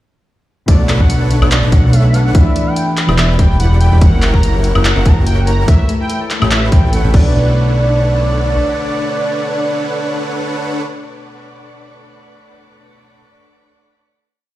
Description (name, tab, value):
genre	future bass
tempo	144 BPM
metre	4/4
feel	swing 55% on 16ths, half-time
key	B minor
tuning	A4 = 440 Hz
part	warm velvety synth lead	melody	0.7-10.8 s	D5 to A#5	-22 LUFS	right 1 dB	chorus, sidechain pumping, ping-pong delay
part	glassy digital keys	accompaniment	0.7-13.2 s	B2 to D5	-23 LUFS	left 1 dB	chorus, phaser, sidechain pumping
part	concert harp	arpeggios	0.7-10.5 s	A3 to D5	-25 LUFS	left 2 dB	sidechain pumping, ping-pong delay
part	dense compressed supersaw	riff	0.7-10.8 s	D4 to B5	-22 LUFS	right 1 dB	sidechain pumping
part	fat analog bass	bass	0.7-8.6 s	E1 to B1	-12 LUFS	equal	sidechain pumping
part	big-room dance drum kit	drums	0.7-7.2 s	crash cymbal, handclaps, hi-hat, woodblock	-20 LUFS	left 1 dB	none
part	electronic kick drum	drums	0.7-7.2 s	none	-10 LUFS	equal	overdrive
room	little or no reverb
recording	played on a big sound system in a bare room, large studio reverb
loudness	-11 LUFS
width	side -15 dB against mid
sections	0.7-7.3 drop; 7.3-10.7 final hit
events	drop 0.7-7.3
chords	0.7 Bm9; 2.3 Em7; 4.0 F#7b9; 5.7 A9; 7.1 Bm9